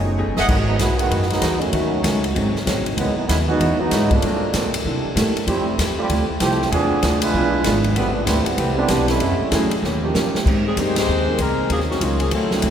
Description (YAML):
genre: jazz, big band swing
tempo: 193 BPM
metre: 4/4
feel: swing 62% on 8ths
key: unclear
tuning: A4 = 439 Hz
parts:
  - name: warm saxophone section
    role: melody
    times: 0.0-0.2, 10.7-12.7 s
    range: Eb3 to C5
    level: -24 LUFS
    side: left 4 dB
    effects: none
  - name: archtop guitar, miked and amplified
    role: accompaniment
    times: 0.0-12.7 s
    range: G2 to B4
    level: -27 LUFS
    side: left 3 dB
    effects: none
  - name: warm concert grand piano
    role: accompaniment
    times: 0.0-12.7 s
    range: E3 to Bb4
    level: -26 LUFS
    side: right 2 dB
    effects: none
  - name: upright bass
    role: bass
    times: 0.0-12.7 s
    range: F1 to C3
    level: -22 LUFS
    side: equal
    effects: none
  - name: warm trumpet section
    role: stabs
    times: 0.4-0.5 s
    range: G#4 to F#5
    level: -27 LUFS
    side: equal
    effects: none
  - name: swinging big-band drum kit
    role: drums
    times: 0.4-12.7 s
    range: crash cymbal, hi-hat, kick drum, ride cymbal, snare drum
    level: -24 LUFS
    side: equal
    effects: none
  - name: mellow trombone section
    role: second line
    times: 0.5-9.7 s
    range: C3 to B4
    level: -22 LUFS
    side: right 3 dB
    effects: none
room: wet cathedral reverb, RT60 4.2 s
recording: recorded in a church or concert hall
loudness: -17 LUFS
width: side -9 dB against mid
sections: 0.5-10.5 A section; 10.5-12.7 B section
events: drum fill 0.2-0.5, 9.8-10.5; trombone section solo 0.5-10.5; band accent 10.9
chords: 0.5 Emaj9; 1.7 D#m7b5; 2.4 G#7; 3.0 C#m11; 4.2 Gm11; 4.8 C13; 5.5 Fmaj9; 6.7 E7b9; 8.0 Am9; 9.2 F#m9; 9.8 D#7; 10.5 Abmaj7; 11.7 Ebm7